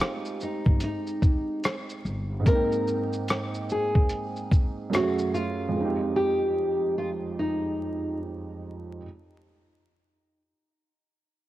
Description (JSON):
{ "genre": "lo-fi hip hop", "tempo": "73 BPM", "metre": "4/4", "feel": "swing 62% on 16ths", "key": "F minor", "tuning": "A4 = 440 Hz", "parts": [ { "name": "nylon-string guitar", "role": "melody", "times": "0.0-8.2 s", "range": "Eb4 to Bb4", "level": "-28 LUFS", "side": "left 1 dB", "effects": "low-pass filter, cassette tape" }, { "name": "felt-muted upright piano", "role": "accompaniment", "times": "0.0-9.1 s", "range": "F2 to G5", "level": "-30 LUFS", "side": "right 3 dB", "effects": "cassette tape, low-pass filter" }, { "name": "dusty soul sampler-style drum kit", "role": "drums", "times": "0.0-5.6 s", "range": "hi-hat, kick drum, rim click, shaker", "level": "-24 LUFS", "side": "equal", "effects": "cassette tape" }, { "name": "upright bass", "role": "bass", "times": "0.7-2.4 s", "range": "G1", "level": "-33 LUFS", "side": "equal", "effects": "transformer saturation" } ], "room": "light reverb, small room ambience", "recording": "home recording on cassette, vinyl crackle", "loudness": "-24 LUFS", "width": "side -15 dB against mid", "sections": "0.0-9.0 A section", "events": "none", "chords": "0.0 Fm9 (rootless); 2.5 Abmaj7; 4.9 Gbm9; 5.7 Fm9" }